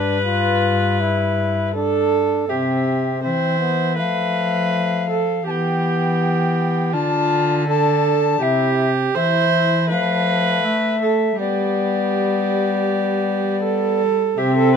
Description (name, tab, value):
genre	classical, renaissance-style consort dance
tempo	81 BPM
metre	4/4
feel	straight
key	G mixolydian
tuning	A4 = 440 Hz
part	tenor recorder	melody	0.0-14.8 s	B4 to A5	-24 LUFS	left 8 dB	none
part	warm viola	second line	0.0-14.7 s	F4 to C5	-21 LUFS	right 6 dB	none
part	brilliant trombone	accompaniment	0.0-14.8 s	A3 to F4	-24 LUFS	left 5 dB	none
part	rich cello	bass	0.0-14.8 s	G2 to A3	-22 LUFS	equal	none
room	light reverb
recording	close, detailed microphones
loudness	-17 LUFS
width	side -7 dB against mid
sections	0.0-2.5 A section; 2.5-14.4 B section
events	none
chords	0.0 G; 2.5 C; 4.0 F; 5.5 Em; 6.9 Dm; 8.4 C; 9.9 F; 11.4 G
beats	0.26 1.00 1.75 | 2.50 3.25 3.99 4.73 | 5.46 6.20 6.93 7.67 | 8.41 9.16 9.90 10.64 | 11.38 12.13 12.88 13.63 | 14.38